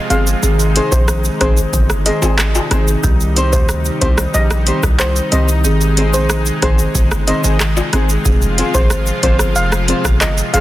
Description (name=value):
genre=dancehall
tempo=92 BPM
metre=4/4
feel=straight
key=unclear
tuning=A4 = 443 Hz
part: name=lush unison pad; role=sustained chords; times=0.0-10.6 s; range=C3 to F4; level=-23 LUFS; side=equal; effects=chorus, sidechain pumping
part: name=steel pan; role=melody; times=0.1-10.6 s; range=C5 to F5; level=-22 LUFS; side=equal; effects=tape echo
part: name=marimba with soft mallets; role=accompaniment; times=0.1-10.6 s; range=Eb3 to Ab4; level=-22 LUFS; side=equal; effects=sidechain pumping
part: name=nylon-string guitar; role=arpeggios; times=0.1-10.6 s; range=C4 to C5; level=-22 LUFS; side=left 2 dB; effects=none
part: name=hard-hitting 808-style bass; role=bass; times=0.1-10.6 s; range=F1 to D2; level=-17 LUFS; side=equal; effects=none
part: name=booming analog drum machine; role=drums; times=0.1-10.6 s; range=handclaps, hi-hat, kick drum, rim click, shaker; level=-17 LUFS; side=equal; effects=soft clipping on snare
part: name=egg shaker and timbales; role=percussion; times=0.1-10.6 s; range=none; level=-25 LUFS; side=left 7 dB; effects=none
room=little or no reverb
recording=dense, heavily limited modern master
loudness=-12 LUFS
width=side -15 dB against mid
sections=0.0-10.6 A section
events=none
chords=0.4 Ab; 3.0 Cm; 5.6 Ab; 8.3 Fm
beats=| 0.43 1.08 1.73 2.39 | 3.04 3.69 4.34 5.00 | 5.65 6.30 6.95 7.60 | 8.26 8.91 9.56 10.21